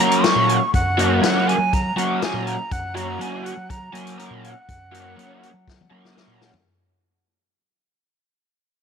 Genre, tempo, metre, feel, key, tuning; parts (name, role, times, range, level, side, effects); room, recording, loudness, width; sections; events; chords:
psychedelic rock; 121 BPM; 4/4; straight; F# major; A4 = 440 Hz
breathy bright jazz flute; melody; 0.0-5.9 s; F#5 to C#6; -23 LUFS; right 2 dB; slapback echo
raw garage guitar; riff; 0.0-6.5 s; F#3 to F#4; -22 LUFS; left 1 dB; overdrive, flanger
growling fingered electric bass; bass; 0.0-6.5 s; F#2 to F#3; -27 LUFS; right 1 dB; overdrive
vintage drum kit; drums; 0.1-6.6 s; hi-hat, kick drum, snare drum, toms; -24 LUFS; left 3 dB
light reverb, small room ambience; 1960s-style stereo; -18 LUFS; side -6 dB against mid
0.0-6.7 A section
fade-out 0.0-6.7; drum fill 5.7-6.7
0.0 F#